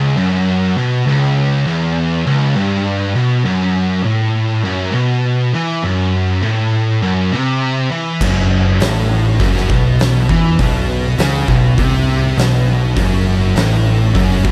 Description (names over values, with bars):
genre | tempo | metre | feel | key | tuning
stoner and doom metal | 101 BPM | 4/4 | straight | unclear | A4 = 440 Hz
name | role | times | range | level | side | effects
scooped high-gain guitar | riff | 0.0-14.5 s | C#2 to E3 | -24 LUFS | equal | distortion
thick fuzz guitar | riff | 0.0-14.5 s | C#2 to E3 | -20 LUFS | equal | distortion
thick fuzz guitar | riff | 0.0-14.5 s | C#2 to E3 | -19 LUFS | equal | distortion
growling fingered electric bass | bass | 8.2-14.5 s | F#1 to E2 | -21 LUFS | equal | overdrive
oversized low-tuned drum kit | drums | 8.2-14.5 s | crash cymbal, hi-hat, kick drum, snare drum | -20 LUFS | equal | none
room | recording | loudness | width
light reverb, small room ambience | dark, warm production | -15 LUFS | mono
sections
0.0-14.5 A section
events
none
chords
0.0 C#m; 3.5 F#5